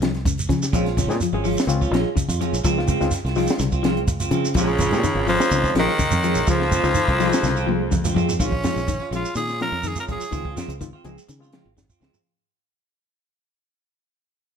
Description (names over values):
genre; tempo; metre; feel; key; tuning
afrobeat; 125 BPM; 4/4; straight; Bb minor; A4 = 440 Hz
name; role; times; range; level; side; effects
clean electric guitar; arpeggios; 0.0-12.1 s; Db3 to F3; -27 LUFS; left 8 dB; none
fingered electric bass; bass; 0.0-12.2 s; Ab1 to Db3; -25 LUFS; equal; none
compact cocktail drum kit; drums; 0.0-12.2 s; hi-hat, kick drum, snare drum, toms; -26 LUFS; equal; none
shekere; percussion; 0.3-12.3 s; none; -29 LUFS; right 4 dB; none
overdriven reed electric piano; accompaniment; 0.6-11.7 s; Ab3 to Ab4; -30 LUFS; left 5 dB; none
semi-hollow electric guitar; stabs; 0.7-12.2 s; Ab3 to F4; -27 LUFS; right 6 dB; spring reverb
raspy tenor saxophone; melody; 4.6-10.5 s; Db3 to Bb4; -23 LUFS; right 1 dB; plate reverb
raspy baritone saxophone; second line; 4.6-8.1 s; Db2 to F2; -27 LUFS; left 5 dB; none
room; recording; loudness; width
light reverb; none; -19 LUFS; side -7 dB against mid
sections
0.0-8.4 A section; 8.4-12.2 B section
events
drum fill 7.4-8.4, 11.8-12.2; fade-out 8.4-12.2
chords
0.0 Dbmaj7; 0.7 Bbm7; 2.6 Dbmaj7; 4.6 Bbm7; 6.5 Dbmaj7; 8.4 Bbm7; 10.3 Dbmaj7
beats
0.25 | 0.73 1.21 1.69 2.17 | 2.64 3.12 3.60 4.08 | 4.56 5.04 5.52 6.00 | 6.48 6.96 7.44 7.92 | 8.40 8.88 9.36 9.84 | 10.32 10.80 11.29 11.77